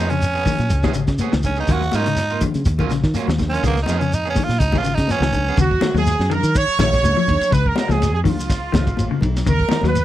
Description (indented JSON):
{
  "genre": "afrobeat",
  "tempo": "123 BPM",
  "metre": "4/4",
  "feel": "swing 54% on 16ths",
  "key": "Eb minor",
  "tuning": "A4 = 442 Hz",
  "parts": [
    { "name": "raspy tenor saxophone", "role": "melody", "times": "0.0-5.6 s", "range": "Bb3 to Gb4", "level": "-22 LUFS", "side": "right 3 dB", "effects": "none" },
    { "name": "electric guitar at the edge of break-up", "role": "stabs", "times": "0.0-5.6 s", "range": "F3 to Ab4", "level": "-28 LUFS", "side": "right 9 dB", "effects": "spring reverb" },
    { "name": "fingered electric bass", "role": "bass", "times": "0.0-10.0 s", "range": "Ab1 to Eb3", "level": "-21 LUFS", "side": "equal", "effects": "none" },
    { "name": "clean electric guitar", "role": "arpeggios", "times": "0.1-10.0 s", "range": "Db3 to Gb3", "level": "-25 LUFS", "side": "left 7 dB", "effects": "lush chorus, tape echo" },
    { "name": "crunchy breakbeat drum kit", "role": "drums", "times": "0.1-10.0 s", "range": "hi-hat, kick drum, ride cymbal, snare drum", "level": "-23 LUFS", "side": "equal", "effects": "none" },
    { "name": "shekere", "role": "percussion", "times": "0.1-10.0 s", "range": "none", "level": "-28 LUFS", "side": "left 1 dB", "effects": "none" },
    { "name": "congas", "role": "percussion", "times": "0.5-10.0 s", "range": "none", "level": "-26 LUFS", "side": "left 4 dB", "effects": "none" },
    { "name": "bright horn section", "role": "melody", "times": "5.6-10.0 s", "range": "F4 to Db5", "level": "-22 LUFS", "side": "right 3 dB", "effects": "none" },
    { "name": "warm trumpet", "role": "second line", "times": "5.6-10.0 s", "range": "F4 to Db5", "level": "-26 LUFS", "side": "right 6 dB", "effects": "none" }
  ],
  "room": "little or no reverb",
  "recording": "dry, close 1970s-style studio recording",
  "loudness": "-16 LUFS",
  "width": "side -13 dB against mid",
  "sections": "0.0-5.6 A section; 5.6-10.0 B section",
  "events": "tenor saxophone solo 0.0-5.6",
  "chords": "0.0 Db7; 1.7 Ebm9; 3.6 Db7; 5.6 Ebm7; 7.5 Db; 9.5 Ebm7"
}